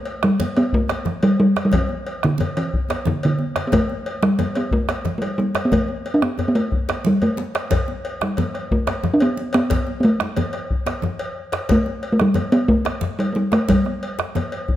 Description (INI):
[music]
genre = west african traditional, West African drum ensemble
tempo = 120 BPM (dotted quarters)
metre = 12/8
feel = straight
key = G major pentatonic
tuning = A4 = 441 Hz
[part]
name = talking drum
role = melody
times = 0.0-14.8 s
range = D3 to D4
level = -19 LUFS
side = equal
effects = none
[part]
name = cowbell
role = percussion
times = 0.1-14.7 s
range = none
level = -29 LUFS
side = left 2 dB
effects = none
[part]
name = bombo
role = percussion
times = 0.2-14.8 s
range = none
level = -25 LUFS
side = equal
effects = none
[part]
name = djembe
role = percussion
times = 0.2-14.8 s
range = none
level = -28 LUFS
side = left 5 dB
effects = none
[part]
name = congas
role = percussion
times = 0.4-14.5 s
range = none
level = -30 LUFS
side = right 4 dB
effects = none
[sound]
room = moderate recital hall reverb, RT60 1.5 s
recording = none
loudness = -18 LUFS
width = side -13 dB against mid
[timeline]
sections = 0.0-14.8 A section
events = drum fill 7.0-7.7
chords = none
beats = 0.23 0.73 1.23 | 1.73 2.23 2.72 3.22 | 3.72 4.22 4.72 5.22 | 5.72 6.22 6.72 7.21 | 7.71 8.21 8.71 9.21 | 9.71 10.20 10.70 11.20 | 11.70 12.19 12.69 13.19 | 13.69 14.18 14.68